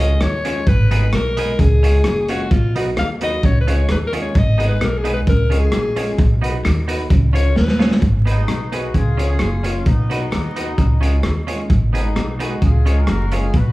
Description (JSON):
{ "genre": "ska", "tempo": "131 BPM", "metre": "4/4", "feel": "straight", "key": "unclear", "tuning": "A4 = 440 Hz", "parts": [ { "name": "raspy alto saxophone", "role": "melody", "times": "0.0-8.0 s", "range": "E#4 to E#5", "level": "-22 LUFS", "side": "left 2 dB", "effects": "none" }, { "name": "clean electric guitar", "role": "accompaniment", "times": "0.0-13.5 s", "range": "B3 to C#5", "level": "-29 LUFS", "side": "right 4 dB", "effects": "none" }, { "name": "clear upright piano", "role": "stabs", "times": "0.0-13.5 s", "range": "F#3 to C#5", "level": "-28 LUFS", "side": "equal", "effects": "none" }, { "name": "upright bass", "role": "bass", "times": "0.0-13.7 s", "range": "F#1 to D#2", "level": "-18 LUFS", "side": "equal", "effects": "none" }, { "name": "crunchy breakbeat drum kit", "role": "drums", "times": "0.0-13.7 s", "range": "hi-hat, kick drum, rim click, snare drum", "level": "-19 LUFS", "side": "equal", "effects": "none" }, { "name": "electric guitar at the edge of break-up", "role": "riff", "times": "0.2-13.7 s", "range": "F#2 to D#3", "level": "-28 LUFS", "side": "left 2 dB", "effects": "dub echo" }, { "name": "mellow horn section", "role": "melody", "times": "8.3-13.7 s", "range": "B3 to B4", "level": "-28 LUFS", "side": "left 2 dB", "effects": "none" } ], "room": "light reverb", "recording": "band playing live in one room, vinyl crackle", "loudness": "-15 LUFS", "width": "side -19 dB against mid", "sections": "0.0-8.0 A section; 8.0-13.7 B section", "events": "alto saxophone solo 0.0-8.0; drum fill 7.6-8.0", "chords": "0.0 C#; 0.7 G#m; 1.6 C#; 2.5 B; 3.4 C#; 4.4 G#m; 5.3 C#; 6.2 B; 7.1 C#; 8.0 G#m; 8.9 C#; 9.9 B; 10.8 C#; 11.7 G#m; 12.6 C#", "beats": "0.22 | 0.68 1.14 1.59 2.05 | 2.51 2.97 3.43 3.89 | 4.35 4.81 5.27 5.73 | 6.19 6.65 7.11 7.57 | 8.03 8.48 8.95 9.40 | 9.86 10.32 10.78 11.24 | 11.70 12.16 12.62 13.08 | 13.54" }